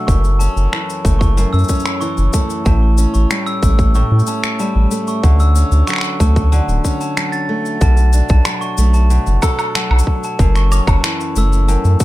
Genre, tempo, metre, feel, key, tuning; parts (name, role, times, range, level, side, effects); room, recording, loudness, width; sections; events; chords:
folktronica; 93 BPM; 4/4; straight; A4 = 440 Hz
picked steel-string acoustic guitar; arpeggios; 0.0-12.0 s; F#2 to A4; -21 LUFS; equal; plate reverb, ping-pong delay
glockenspiel with rubber mallets; second line; 0.1-11.8 s; A5 to A6; -24 LUFS; equal; plate reverb, digital delay
round analog bass; bass; 0.1-12.0 s; D1 to A2; -12 LUFS; equal; tube saturation
electronic cabasa, finger snaps and woodblock; drums; 0.1-12.0 s; -23 LUFS; left 1 dB; overdrive
electronic kick drum; drums; 0.1-12.0 s; -15 LUFS; equal; overdrive
light reverb; -12 LUFS; side -16 dB against mid
0.0-7.8 A section; 7.8-12.0 B section
break 7.2-7.8
0.1 F#m7; 2.7 A7; 5.2 Dmaj7; 7.8 Bm7; 10.4 F#m7